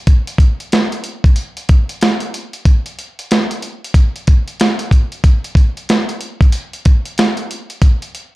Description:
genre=hip hop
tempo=93 BPM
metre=4/4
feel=swing 64% on 16ths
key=none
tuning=none
part: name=dusty soul sampler-style drum kit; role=drums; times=0.1-8.3 s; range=hi-hat, kick drum, snare drum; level=-12 LUFS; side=equal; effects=none
room=moderate studio reverb, RT60 0.6 s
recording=dark, warm production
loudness=-12 LUFS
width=side -19 dB against mid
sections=0.0-7.8 A section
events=none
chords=none

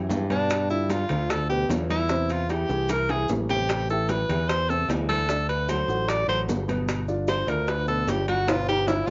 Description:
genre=Afro-Cuban jazz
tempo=150 BPM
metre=4/4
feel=straight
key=G mixolydian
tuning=A4 = 440 Hz
part: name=dark concert grand piano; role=accompaniment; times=0.0-9.1 s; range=B2 to D5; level=-33 LUFS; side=equal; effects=cassette tape
part: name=modern bright fingered electric bass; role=bass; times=0.0-9.1 s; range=G1 to G2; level=-31 LUFS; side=equal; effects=none
part: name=bongos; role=percussion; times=0.1-9.1 s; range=none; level=-35 LUFS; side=equal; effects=none
part: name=congas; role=percussion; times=0.1-9.1 s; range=none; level=-39 LUFS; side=equal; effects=none
part: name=maracas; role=percussion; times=0.1-9.1 s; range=none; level=-49 LUFS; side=equal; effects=none
part: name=timbales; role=percussion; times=0.1-9.0 s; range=none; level=-35 LUFS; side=equal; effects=none
part: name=clear tenor saxophone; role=melody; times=0.3-9.1 s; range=D4 to D5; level=-28 LUFS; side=equal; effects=none
room=wet booth ambience, RT60 0.2 s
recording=home recording on cassette, nothing above 7.7 kHz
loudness=-25 LUFS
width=mono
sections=0.0-9.1 A section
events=tenor saxophone solo 0.0-9.1; drum fill 2.5-3.7, 8.5-9.1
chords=0.0 C#dim (rootless); 0.5 G7; 2.1 Eaug; 3.7 Am7; 5.3 D7; 6.9 G7

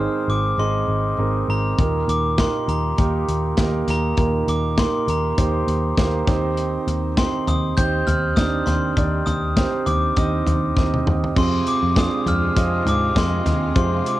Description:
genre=piano-driven pop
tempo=100 BPM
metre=4/4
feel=swing 56% on 16ths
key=unclear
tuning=A4 = 440 Hz
part: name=glockenspiel with brass mallets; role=melody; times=0.0-14.2 s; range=Bb5 to G6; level=-25 LUFS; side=left 3 dB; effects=cassette tape
part: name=warm concert grand piano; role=accompaniment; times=0.0-14.2 s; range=Ab2 to Eb5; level=-23 LUFS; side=right 5 dB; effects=cassette tape
part: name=vintage muted picked electric bass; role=bass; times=0.0-14.0 s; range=Ab1 to Ab2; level=-23 LUFS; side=left 1 dB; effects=none
part: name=modern studio drum kit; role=drums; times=1.8-14.2 s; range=crash cymbal, hi-hat, kick drum, snare drum, toms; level=-22 LUFS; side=left 1 dB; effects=cassette tape
part: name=clear studio string section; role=sustained chords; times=11.4-14.2 s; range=C3 to F4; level=-32 LUFS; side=left 2 dB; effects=cassette tape
room=moderate small room reverb, RT60 0.5 s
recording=home recording on cassette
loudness=-18 LUFS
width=side -15 dB against mid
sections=0.0-11.4 A section; 11.4-14.2 B section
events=drum fill 10.8-11.4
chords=0.0 Ab; 1.8 Eb; 6.3 Cm/Eb; 11.4 Fm

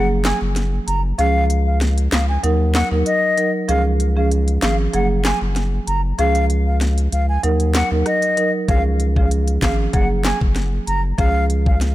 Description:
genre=dancehall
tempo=96 BPM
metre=4/4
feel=straight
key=Db major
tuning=A4 = 439 Hz
part: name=wooden flute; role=melody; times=0.0-11.8 s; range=Eb5 to Bb5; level=-22 LUFS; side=left 2 dB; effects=ping-pong delay
part: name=marimba with medium mallets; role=accompaniment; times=0.0-11.8 s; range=F3 to Bb4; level=-22 LUFS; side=right 3 dB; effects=none
part: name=saturated sub bass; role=bass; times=0.0-11.9 s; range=Gb1 to Eb2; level=-18 LUFS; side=equal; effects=none
part: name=island pop drum kit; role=drums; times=0.2-11.9 s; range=handclaps, hi-hat, kick drum, rim click, snare drum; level=-22 LUFS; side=equal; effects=none
room=little or no reverb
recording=none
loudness=-16 LUFS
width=side -15 dB against mid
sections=0.0-11.9 A section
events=break 0.0-8.7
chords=0.0 Gbadd9; 1.2 Db; 2.4 Ebm; 3.7 Db; 4.9 Gbadd9; 6.2 Db; 7.4 Ebm; 8.7 Db; 9.9 Gbadd9; 11.2 Db

